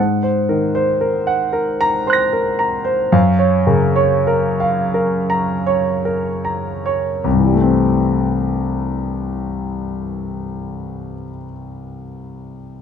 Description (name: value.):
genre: classical, impressionist solo piano.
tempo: 24-38 BPM (dotted quarters).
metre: 6/8.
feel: rubato.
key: unclear.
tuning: A4 = 438 Hz.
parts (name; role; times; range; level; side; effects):
warm grand piano; solo; 0.0-12.8 s; C2 to Bb6; -16 LUFS; equal; none.
room: light reverb.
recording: close, detailed microphones.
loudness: -15 LUFS.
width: side -7 dB against mid.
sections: 0.0-7.2 A section; 7.2-11.8 B section.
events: slowing down 0.0-7.2.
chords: 0.0 Ab9; 3.1 F#maj7; 7.2 C6.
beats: 1.55 | 3.13 4.94 | 7.24 9.53.